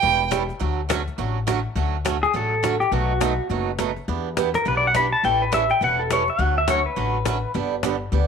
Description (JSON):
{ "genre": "country, western swing", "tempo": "207 BPM", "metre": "4/4", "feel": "swing 61% on 8ths", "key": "D major", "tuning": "A4 = 440 Hz", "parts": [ { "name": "picked swing-style acoustic guitar", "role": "accompaniment", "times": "0.0-8.3 s", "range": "B2 to A4", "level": "-26 LUFS", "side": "right 11 dB", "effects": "none" }, { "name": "upright bass", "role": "bass", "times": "0.0-8.3 s", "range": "E1 to E2", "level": "-26 LUFS", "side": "left 2 dB", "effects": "none" }, { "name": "cajon", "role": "drums", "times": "0.0-8.2 s", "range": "none", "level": "-29 LUFS", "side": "left 9 dB", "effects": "none" }, { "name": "pedal steel guitar", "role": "melody", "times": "2.2-7.5 s", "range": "F#4 to B5", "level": "-21 LUFS", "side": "left 2 dB", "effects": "none" } ], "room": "moderate spring reverb, RT60 1.8 s, studio reverb", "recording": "1960s-style stereo with parts hard left and right", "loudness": "-20 LUFS", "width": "side -6 dB against mid", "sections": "0.0-1.8 A section; 1.8-8.3 A section", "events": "pedal steel guitar solo 1.8-8.3", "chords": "0.0 A7; 0.6 Dmaj7; 2.9 B7; 4.1 Em7; 5.2 A7; 6.4 Dmaj7; 7.5 G", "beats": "0.03 0.32 | 0.61 0.90 1.19 1.48 | 1.76 2.05 2.34 2.63 | 2.92 3.21 3.50 3.79 | 4.08 4.37 4.66 4.95 | 5.24 5.53 5.81 6.10 | 6.39 6.68 6.97 7.26 | 7.55 7.84 8.12" }